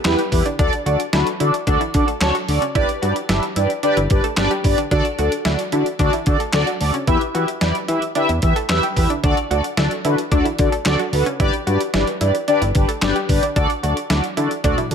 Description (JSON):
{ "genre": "synth-pop", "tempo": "111 BPM", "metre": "4/4", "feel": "straight", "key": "D major", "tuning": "A4 = 439 Hz", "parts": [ { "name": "analog pluck", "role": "arpeggios", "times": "0.0-14.9 s", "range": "C#4 to A4", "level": "-27 LUFS", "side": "right 2 dB", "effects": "chorus, ping-pong delay" }, { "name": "detuned 8-bit digital drum machine", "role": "drums", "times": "0.0-14.9 s", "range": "handclaps, hi-hat, kick drum, snare drum, toms", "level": "-22 LUFS", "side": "equal", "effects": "none" }, { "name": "mellow synth brass", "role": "accompaniment", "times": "0.1-14.9 s", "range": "B3 to E5", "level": "-20 LUFS", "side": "left 1 dB", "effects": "chorus, phaser" }, { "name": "fat analog bass", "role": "bass", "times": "0.1-14.9 s", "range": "G1 to E3", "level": "-21 LUFS", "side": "equal", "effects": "none" } ], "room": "light reverb, digital ambience", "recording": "none", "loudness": "-16 LUFS", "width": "side -7 dB against mid", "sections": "0.0-14.9 A section", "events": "drum fill 14.6-14.9", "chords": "0.0 Em; 0.6 D; 2.8 G; 4.9 D; 7.1 Em; 9.2 D; 11.4 G; 13.6 D" }